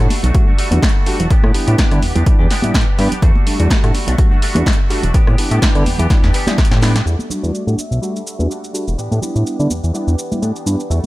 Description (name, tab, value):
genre	filtered disco house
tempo	125 BPM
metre	4/4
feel	swing 55% on 16ths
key	E minor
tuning	A4 = 440 Hz
part	tine electric piano	accompaniment	0.0-10.8 s	G3 to F#4	-23 LUFS	equal	phaser, vintage 12-bit sampler grit, sidechain pumping, low-pass filter
part	direct-recorded clean electric guitar	riff	0.0-11.1 s	E3 to G4	-25 LUFS	equal	ensemble chorus, sidechain pumping, low-pass filter
part	fat analog bass	bass	0.0-11.0 s	E1 to D3	-16 LUFS	equal	sidechain pumping, low-pass filter
part	punchy analog drum machine	drums	0.0-11.1 s	cabasa, hi-hat, rim click, snare drum	-22 LUFS	equal	sidechain pumping on hats, sidechain pumping on perc
part	egg shaker and congas	percussion	0.1-11.1 s	none	-24 LUFS	right 1 dB	sidechain pumping on perc, low-pass filter on perc
part	electronic kick drum	drums	0.3-6.7 s	none	-14 LUFS	equal	none
part	analog synth brass	melody	7.4-8.5 s	D5 to E5	-35 LUFS	left 2 dB	chorus, sidechain pumping, low-pass filter, tape echo
room	digital ambience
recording	none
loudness	-13 LUFS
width	side -18 dB against mid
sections	0.0-7.1 A section; 7.1-11.1 B section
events	drum fill 6.1-7.1; filter sweep 7.1-11.1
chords	0.0 Em11; 1.3 A9sus4; 3.2 Em11; 5.1 A9sus4; 7.1 Em11; 9.0 A9sus4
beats	0.34 0.82 | 1.30 1.78 2.26 2.74 | 3.22 3.70 4.18 4.66 | 5.14 5.62 6.10 6.58 | 7.06 7.54 8.02 8.50 | 8.98 9.46 9.94 10.42 | 10.90